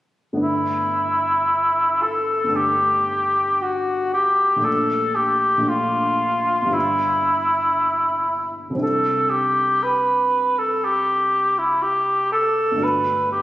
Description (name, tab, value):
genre	classical, impressionist duo for cor anglais and grand piano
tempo	55-61 BPM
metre	4/4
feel	rubato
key	G major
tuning	A4 = 440 Hz
part	warm grand piano	accompaniment	0.3-13.4 s	G1 to F#4	-27 LUFS	equal	none
part	mellow cor anglais	melody	0.4-13.4 s	E4 to B4	-18 LUFS	equal	none
room	moderate scoring stage reverb, RT60 1.9 s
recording	recorded on a phone in the room, studio reverb, compression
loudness	-17 LUFS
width	side -15 dB against mid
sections	0.4-13.4 A section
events	none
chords	0.4 G69; 6.8 G6; 8.8 Cadd9; 12.8 Gmaj9